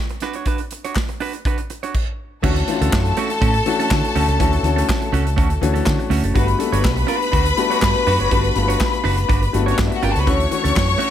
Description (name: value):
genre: disco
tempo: 122 BPM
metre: 4/4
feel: straight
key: D major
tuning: A4 = 442 Hz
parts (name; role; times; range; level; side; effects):
- clean electric guitar; accompaniment; 0.1-11.1 s; A3 to C#5; -26 LUFS; right 8 dB; none
- modern studio drum kit; drums; 0.1-11.1 s; crash cymbal, handclaps, hi-hat, kick drum, snare drum; -22 LUFS; right 1 dB; none
- group handclap; percussion; 1.0-10.9 s; none; -29 LUFS; left 6 dB; none
- clear studio string section; second line; 2.4-11.1 s; C#4 to C#6; -22 LUFS; left 3 dB; none
- clear grand piano; accompaniment; 2.4-11.1 s; E3 to A4; -23 LUFS; left 6 dB; none
- vintage muted fingered electric bass; bass; 2.4-10.9 s; F#1 to D3; -20 LUFS; equal; none
room: little or no reverb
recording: none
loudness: -16 LUFS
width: side -10 dB against mid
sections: 0.0-2.4 A section; 2.4-11.1 B section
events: none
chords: 0.0 D6; 2.4 Dmaj7; 6.4 Gmaj7; 10.3 Dmaj7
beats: | 0.46 0.95 1.45 1.94 | 2.43 2.92 3.42 3.91 | 4.40 4.89 5.38 5.87 | 6.36 6.84 7.33 7.82 | 8.31 8.80 9.29 9.78 | 10.27 10.76